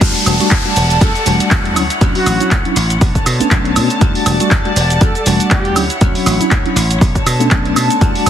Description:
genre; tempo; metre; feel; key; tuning
filtered disco house; 120 BPM; 4/4; swing 56% on 16ths; E dorian; A4 = 440 Hz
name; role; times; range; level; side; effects
mellow tine electric piano; accompaniment; 0.0-8.3 s; F#3 to F#4; -18 LUFS; left 1 dB; fast stereo tremolo, phaser, vintage 12-bit sampler grit, sidechain pumping, low-pass filter
rich chamber string section; sustained chords; 0.0-8.3 s; D3 to A5; -20 LUFS; equal; vintage 12-bit sampler grit, sidechain pumping, low-pass filter
dry thumbed slap bass; bass; 0.0-8.3 s; E1 to B2; -17 LUFS; equal; tube saturation, sidechain pumping, low-pass filter
electronic kick drum; drums; 0.0-8.1 s; none; -13 LUFS; equal; none
punchy analog drum machine; drums; 0.0-8.3 s; crash cymbal, handclaps, hi-hat, shaker, woodblock; -18 LUFS; right 2 dB; sidechain pumping on perc, sidechain pumping on hats, sidechain pumping on cymbals
downlifter; sound effects; 0.0-4.0 s; none; -23 LUFS; left 2 dB; none
warm horn section; melody; 1.0-5.8 s; F#4 to A4; -23 LUFS; equal; vintage 12-bit sampler grit, sidechain pumping, low-pass filter, dub echo
room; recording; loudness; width
light reverb; heavily compressed radio sound, multiband compression; -11 LUFS; side -10 dB against mid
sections
0.0-8.3 A section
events
drop 0.0-8.3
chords
0.0 Em11; 1.8 Dmaj9; 3.0 Bm9; 4.0 Em11; 5.8 Dmaj9; 7.0 Bm9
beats
| 0.01 0.51 1.01 1.51 | 2.01 2.51 3.01 3.51 | 4.01 4.51 5.01 5.51 | 6.01 6.51 7.01 7.51 | 8.01

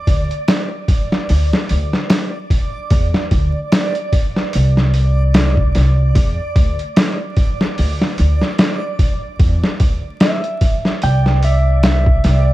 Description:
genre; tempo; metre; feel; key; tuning
trip hop; 74 BPM; 4/4; swing 57% on 16ths; unclear; A4 = 441 Hz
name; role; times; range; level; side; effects
backwards swelling texture; texture; 0.0-12.5 s; D5; -26 LUFS; right 2 dB; built-in reverb
upright bass; bass; 0.1-12.5 s; C2 to E2; -14 LUFS; equal; none
trip hop sampler-style drum kit; drums; 0.1-12.5 s; hi-hat, kick drum, snare drum; -15 LUFS; equal; none
clean lap steel guitar; melody; 10.2-12.5 s; E5 to G5; -21 LUFS; right 1 dB; dub echo
room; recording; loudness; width
little or no reverb; dark, warm production, vinyl crackle; -13 LUFS; side -16 dB against mid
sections
0.0-12.5 A section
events
none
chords
0.0 N.C.; 2.9 Dsus2; 4.5 Csus2; 6.2 Dsus2; 7.8 N.C.; 9.4 Dsus2; 11.0 Cadd9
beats
0.49 1.30 2.11 | 2.92 3.73 4.54 5.35 | 6.16 6.97 7.79 8.60 | 9.41 10.22 11.03 11.84

